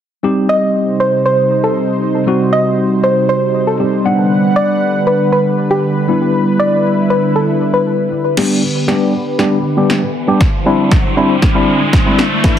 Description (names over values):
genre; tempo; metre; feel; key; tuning
dance-pop; 118 BPM; 4/4; straight; unclear; A4 = 441 Hz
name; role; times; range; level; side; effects
tine electric piano; accompaniment; 0.2-12.6 s; E3 to F#5; -15 LUFS; left 1 dB; medium stereo tremolo, sidechain pumping, low-pass filter
lush unison pad; sustained chords; 0.2-12.6 s; C3 to F#5; -18 LUFS; right 1 dB; chorus, sidechain pumping, low-pass filter
soft round pluck; melody; 0.5-8.1 s; G4 to Eb5; -16 LUFS; equal; chorus, digital delay
punchy analog drum machine; drums; 8.4-12.6 s; crash cymbal, hi-hat, kick drum, snare drum; -14 LUFS; equal; none
riser; sound effects; 9.7-12.6 s; none; -20 LUFS; right 1 dB; none
room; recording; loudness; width
moderate plate reverb, RT60 1.1 s; heavily compressed radio sound, multiband compression; -11 LUFS; side -9 dB against mid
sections
0.2-8.4 A section; 8.4-12.6 B section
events
build-up 8.4-12.6; drum fill 8.4-12.6; filter sweep 8.4-12.6; riser 9.7-12.6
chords
0.2 Cm; 4.1 Gmaj7; 8.4 G; 10.4 Cadd9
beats
| 0.24 0.75 1.25 1.76 | 2.27 2.78 3.29 3.80 | 4.30 4.81 5.32 5.83 | 6.34 6.85 7.36 7.87 | 8.37 8.88 9.39 9.90 | 10.41 10.91 11.42 11.93 | 12.44